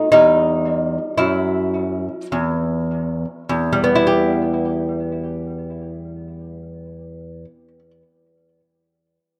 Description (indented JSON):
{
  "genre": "classical, baroque-style dance for lute",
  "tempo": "50-58 BPM",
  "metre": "3/4",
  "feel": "rubato",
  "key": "E minor",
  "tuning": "A4 = 440 Hz",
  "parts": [
    { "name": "lute", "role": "solo", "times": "0.0-8.0 s", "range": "E2 to G4", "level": "-20 LUFS", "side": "equal", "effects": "analog delay" }
  ],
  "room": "wet spring reverb, RT60 1.7 s, studio reverb",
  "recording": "dark, warm production",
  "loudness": "-19 LUFS",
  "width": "mono",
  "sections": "0.0-3.5 A section; 3.5-6.9 B section",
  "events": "slowing down 0.0-3.5",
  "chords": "0.1 Em"
}